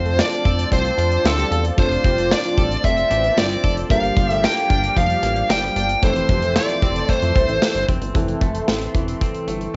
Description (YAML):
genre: 1980s-style pop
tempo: 113 BPM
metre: 4/4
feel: straight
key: F major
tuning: A4 = 439 Hz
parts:
  - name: bluesy overdriven lead guitar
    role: melody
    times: 0.0-7.8 s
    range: A4 to G5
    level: -23 LUFS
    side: equal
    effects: distortion, cassette tape
  - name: FM electric piano with tremolo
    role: accompaniment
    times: 0.0-9.8 s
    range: E3 to C5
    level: -30 LUFS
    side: equal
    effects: cassette tape, plate reverb
  - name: phased analog pad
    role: sustained chords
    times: 0.0-9.8 s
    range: F4 to C6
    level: -32 LUFS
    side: equal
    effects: phaser, chorus, cassette tape, plate reverb
  - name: direct-recorded clean electric guitar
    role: riff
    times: 0.0-9.8 s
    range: E3 to A4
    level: -33 LUFS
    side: equal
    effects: analog chorus, cassette tape
  - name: chorused synth bass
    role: bass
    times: 0.0-9.7 s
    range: E1 to F2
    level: -26 LUFS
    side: equal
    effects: none
  - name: funky polysynth comp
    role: stabs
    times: 0.1-7.6 s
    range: F3 to C5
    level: -33 LUFS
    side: equal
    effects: chorus, cassette tape, analog delay, plate reverb
  - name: big rock drum kit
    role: drums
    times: 0.1-9.7 s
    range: hi-hat, kick drum, snare drum, tambourine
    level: -24 LUFS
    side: equal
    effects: cassette tape
room: light reverb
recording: home recording on cassette, nothing above 7.7 kHz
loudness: -19 LUFS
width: mono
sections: 0.0-8.2 A section; 8.2-9.8 B section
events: none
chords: 0.0 F6; 3.9 Gm7; 6.0 Fmaj7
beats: 0.19 0.72 1.25 | 1.78 2.31 2.84 3.37 | 3.90 4.43 4.96 5.50 | 6.03 6.56 7.09 7.62 | 8.15 8.68 9.21 9.74